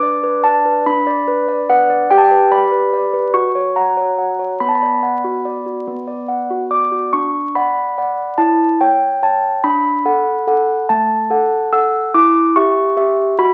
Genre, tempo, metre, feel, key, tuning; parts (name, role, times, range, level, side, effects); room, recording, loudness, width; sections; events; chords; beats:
classical, lullaby for handbells; 48 BPM (dotted quarters); 6/8; straight; B minor, D major from 7.1 s; A4 = 440 Hz
handbells; solo; 0.0-13.5 s; A3 to E6; -16 LUFS; equal
moderate large studio reverb, RT60 0.9 s; very old 78 rpm record, vinyl crackle; -16 LUFS; mono
0.0-7.1 A section; 7.1-13.5 B section
0.0 Bm/D; 2.1 G; 3.4 F#; 4.6 Bm; 7.1 D; 8.4 C#dim/E; 9.6 D; 12.1 Em
0.86 | 2.11 3.35 | 4.61 5.87 | 7.14 8.39 | 9.64 10.89 | 12.13 13.38